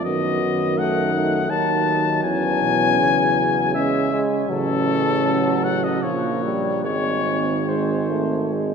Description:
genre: classical, hymn-like piece for brass band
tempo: 71-84 BPM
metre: 3/4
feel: rubato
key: C# minor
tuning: A4 = 439 Hz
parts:
  - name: warm cornet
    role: melody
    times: 0.0-8.5 s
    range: A4 to A5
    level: -22 LUFS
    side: left 7 dB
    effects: none
  - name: warm French horn section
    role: second line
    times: 0.0-8.7 s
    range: A#3 to F#4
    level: -26 LUFS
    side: right 6 dB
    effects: none
  - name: dark trombone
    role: accompaniment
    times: 0.0-8.7 s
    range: B2 to E3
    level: -28 LUFS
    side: right 3 dB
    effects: none
  - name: warm euphonium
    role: accompaniment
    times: 0.0-8.7 s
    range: E#3 to B3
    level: -25 LUFS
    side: equal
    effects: none
  - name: clear tuba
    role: bass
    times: 0.0-8.7 s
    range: G#1 to F#2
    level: -25 LUFS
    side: right 1 dB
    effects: none
room: wet church reverb, RT60 3.7 s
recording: none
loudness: -18 LUFS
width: side -6 dB against mid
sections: 0.0-8.7 A section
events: none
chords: 0.1 D#dim/F#; 2.2 C#m/E; 4.5 A6; 6.0 A#m6; 6.9 G#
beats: | 0.06 0.78 1.51 | 2.25 2.99 3.74 | 4.50 5.25 6.04 | 6.86 7.69 8.52

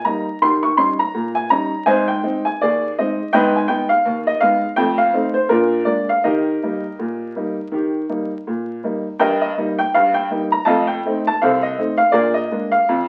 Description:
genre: ragtime piano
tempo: 82 BPM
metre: 2/4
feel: swing 57% on 16ths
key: Eb major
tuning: A4 = 440 Hz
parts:
  - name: clear upright piano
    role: solo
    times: 0.0-13.1 s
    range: C2 to Db6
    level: -18 LUFS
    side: equal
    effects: none
room: wet studio reverb, RT60 0.6 s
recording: very old 78 rpm record, vinyl crackle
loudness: -19 LUFS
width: mono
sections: 0.0-9.2 A section; 9.2-13.1 B section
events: none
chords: 0.4 Eb7; 1.9 Ab; 3.3 Abm; 4.8 F7; 5.5 Bb7; 6.3 Eb; 9.2 Eb/G; 10.7 F7; 12.1 Bb7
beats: | 0.41 1.14 | 1.88 2.60 | 3.33 4.06 | 4.79 5.52 | 6.26 7.00 | 7.74 8.47 | 9.21 9.94 | 10.67 11.40 | 12.13 12.87

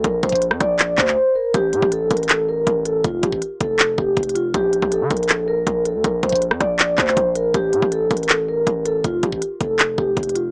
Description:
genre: hip hop, trap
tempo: 160 BPM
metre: 4/4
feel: half-time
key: unclear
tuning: A4 = 439 Hz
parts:
  - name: vibraphone with soft mallets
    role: melody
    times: 0.0-10.5 s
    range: F4 to D5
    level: -21 LUFS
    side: equal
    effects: low-pass filter
  - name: distorted 808-style bass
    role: bass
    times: 0.0-10.5 s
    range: F1 to D3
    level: -27 LUFS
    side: equal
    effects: distortion
  - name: trap drum kit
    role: drums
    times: 0.0-10.4 s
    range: handclaps, hi-hat, kick drum, rim click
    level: -22 LUFS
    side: equal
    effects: none
room: little or no reverb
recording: dry, gritty hardware recording, transformer saturation, small speaker sound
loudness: -19 LUFS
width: mono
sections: 0.0-7.5 A section; 7.5-10.5 B section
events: drums muted 1.2-1.5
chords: 0.0 Bb; 1.5 Gmadd9/A; 3.0 F; 4.5 N.C.; 7.5 Gmadd9/A; 9.0 F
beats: | 0.04 0.42 0.79 1.17 | 1.54 1.92 2.29 2.67 | 3.04 3.42 3.79 4.17 | 4.54 4.92 5.29 5.67 | 6.04 6.42 6.79 7.17 | 7.54 7.92 8.29 8.67 | 9.04 9.42 9.79 10.17

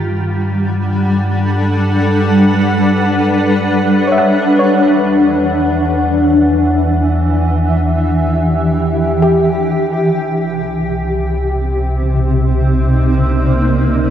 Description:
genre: ambient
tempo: free time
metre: none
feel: none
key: unclear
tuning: A4 = 440 Hz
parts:
  - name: granular cloud pad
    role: sustained chords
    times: 0.0-14.1 s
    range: C3 to F#5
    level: -13 LUFS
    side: equal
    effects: built-in reverb
  - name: round analog bass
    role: bass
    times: 0.0-14.1 s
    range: C2 to G2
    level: -18 LUFS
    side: equal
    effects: none
  - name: soft round pluck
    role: arpeggios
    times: 4.1-10.5 s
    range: G4 to F#5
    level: -20 LUFS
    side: left 1 dB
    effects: wide subtle chorus, diffuse ambient delay
room: wet huge ambient reverb, RT60 7.5 s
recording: none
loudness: -11 LUFS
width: side -10 dB against mid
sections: 0.0-4.5 A section; 4.5-14.1 B section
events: none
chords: 0.0 Gmaj7; 4.5 Em7; 10.1 Cm7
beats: free time

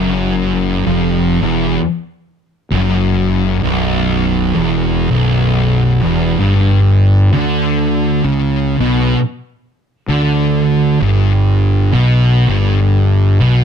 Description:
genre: metal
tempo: 65 BPM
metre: 4/4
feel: swing 60% on 8ths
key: B minor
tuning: A4 = 438 Hz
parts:
  - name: thick fuzz guitar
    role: riff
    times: 0.0-13.6 s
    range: B1 to D3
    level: -15 LUFS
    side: left 6 dB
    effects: distortion
  - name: thick fuzz guitar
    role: riff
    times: 0.0-13.6 s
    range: B1 to D3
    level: -15 LUFS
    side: right 6 dB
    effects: distortion
  - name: fuzz fingered electric bass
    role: bass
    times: 0.0-13.6 s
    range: B0 to D2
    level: -19 LUFS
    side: equal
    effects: overdrive
room: light reverb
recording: dark, warm production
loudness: -11 LUFS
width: side -8 dB against mid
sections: 0.0-13.6 A section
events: none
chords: 0.0 B5; 6.4 G5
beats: 0.87 1.79 | 2.71 3.64 4.56 5.48 | 6.40 7.32 8.24 9.16 | 10.09 11.00 11.92 12.84

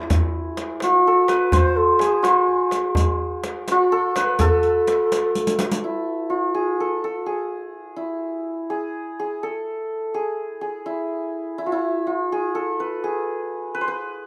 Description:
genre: Persian modal ensemble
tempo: 84 BPM (dotted quarters)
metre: 6/8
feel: straight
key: E dastgah homayun from 5.8 s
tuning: A4 = 440 Hz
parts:
  - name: santur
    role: melody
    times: 0.0-14.3 s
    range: E4 to C5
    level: -24 LUFS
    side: equal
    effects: none
  - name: low ney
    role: second line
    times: 0.0-5.6 s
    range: F4+48c to C5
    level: -25 LUFS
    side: equal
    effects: none
  - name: riq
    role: percussion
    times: 0.1-5.8 s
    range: none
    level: -31 LUFS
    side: equal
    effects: none
  - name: tombak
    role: percussion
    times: 0.1-5.7 s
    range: none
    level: -26 LUFS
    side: equal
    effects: none
room: light reverb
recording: rough home demo mix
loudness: -22 LUFS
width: mono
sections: 0.0-5.8 A section; 5.8-14.3 B section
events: drum fill 5.4-5.8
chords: none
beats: | 0.10 0.81 | 1.53 2.25 | 2.96 3.68 | 4.40 5.12 | 5.83 6.55 | 7.27 7.99 | 8.71 9.43 | 10.14 10.86 | 11.58 12.30 | 13.02 13.74

